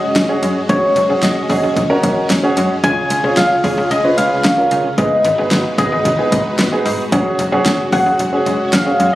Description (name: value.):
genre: synth-pop.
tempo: 112 BPM.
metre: 4/4.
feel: straight.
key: unclear.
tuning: A4 = 444 Hz.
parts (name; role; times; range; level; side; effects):
soft struck synth lead; melody; 0.0-9.1 s; C#5 to G#5; -17 LUFS; equal; chorus, phaser, tape echo.
dark grand piano; accompaniment; 0.0-9.2 s; B3 to B4; -18 LUFS; right 1 dB; none.
string machine, violas; sustained chords; 0.0-9.2 s; C#3 to B4; -24 LUFS; equal; ensemble chorus.
wide unison pluck; arpeggios; 0.0-9.1 s; G#3 to G#4; -24 LUFS; equal; tape echo.
slap-like FM bass; bass; 0.2-9.1 s; F#1 to C#3; -21 LUFS; equal; none.
deep house drum kit; drums; 0.2-9.1 s; hi-hat, kick drum, snare drum; -19 LUFS; equal; overdrive.
room: light reverb, digital ambience.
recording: recorded on a phone in the room, club reverb, compression.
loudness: -12 LUFS.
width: side -15 dB against mid.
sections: 0.0-9.2 A section.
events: none.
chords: 0.0 F#sus2; 2.8 C#; 5.0 G#m7; 7.1 F#sus2.